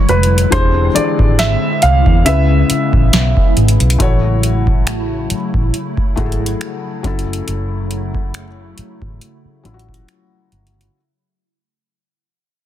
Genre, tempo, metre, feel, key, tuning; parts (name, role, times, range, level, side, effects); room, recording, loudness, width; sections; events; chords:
contemporary R&B; 69 BPM; 4/4; swing 54% on 16ths; F# minor; A4 = 441 Hz
warm baby grand piano; melody; 0.0-3.5 s; B4 to E#5; -18 LUFS; right 2 dB; tape echo
felt-muted upright piano; accompaniment; 0.0-11.0 s; C#3 to D5; -22 LUFS; left 8 dB
hollow soft pad; sustained chords; 0.0-10.9 s; C#3 to E4; -22 LUFS; equal; ensemble chorus
vintage muted fingered electric bass; bass; 0.1-10.9 s; E1 to E2; -15 LUFS; equal
booming analog drum machine; drums; 0.1-10.9 s; finger snaps, hi-hat, kick drum, snare drum; -15 LUFS; equal; soft clipping on snare
little or no reverb; dense, heavily limited modern master; -12 LUFS; side -11 dB against mid
0.0-4.0 A section; 4.0-11.0 B section
fade-out 4.0-11.0
0.0 E9; 0.5 E7alt; 2.3 C#m7; 4.0 A6; 7.0 F#m7